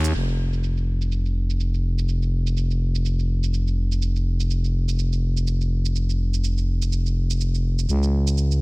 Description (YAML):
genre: bass house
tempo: 124 BPM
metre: 4/4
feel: swing 57% on 16ths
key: unclear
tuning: A4 = 440 Hz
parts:
  - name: growling FM bass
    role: bass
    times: 0.0-8.6 s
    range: F1 to Eb2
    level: -20 LUFS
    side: equal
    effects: overdrive
  - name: electronic hi-hat and shaker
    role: drums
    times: 0.0-8.6 s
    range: none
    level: -35 LUFS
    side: right 6 dB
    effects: low-pass filter on hats, low-pass filter on perc, low-pass filter on snare
room: little or no reverb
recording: none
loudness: -20 LUFS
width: side -26 dB against mid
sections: 0.1-8.6 A section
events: none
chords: none